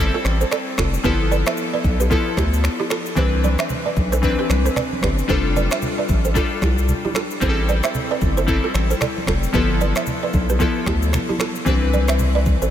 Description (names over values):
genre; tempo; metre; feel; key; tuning
afrobeats; 113 BPM; 4/4; swing 58% on 16ths; C major; A4 = 440 Hz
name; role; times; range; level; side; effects
glassy digital keys; accompaniment; 0.0-12.7 s; E3 to B4; -22 LUFS; left 2 dB; chorus
round analog bass; bass; 0.0-12.7 s; F1 to D2; -20 LUFS; equal; none
balafon; riff; 0.1-12.7 s; E4 to E5; -25 LUFS; right 6 dB; diffuse ambient delay
afro-pop drum kit; drums; 0.2-12.7 s; finger snaps, kick drum, rim click, shaker; -24 LUFS; equal; none
congas; percussion; 3.4-12.6 s; none; -30 LUFS; right 2 dB; none
room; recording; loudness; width
moderate huge ambient reverb, RT60 5.1 s; dreamy mix soaked in reverb; -17 LUFS; side -10 dB against mid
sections
0.0-11.7 A section; 11.7-12.7 B section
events
none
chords
0.0 Fadd9; 1.0 G13; 3.2 Cmaj9; 5.3 F69; 9.5 G13; 11.7 Cmaj9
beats
0.51 | 1.04 1.58 2.11 2.64 | 3.17 3.70 4.23 4.76 | 5.29 5.82 6.35 6.88 | 7.42 7.95 8.48 9.01 | 9.54 10.07 10.60 11.13 | 11.66 12.20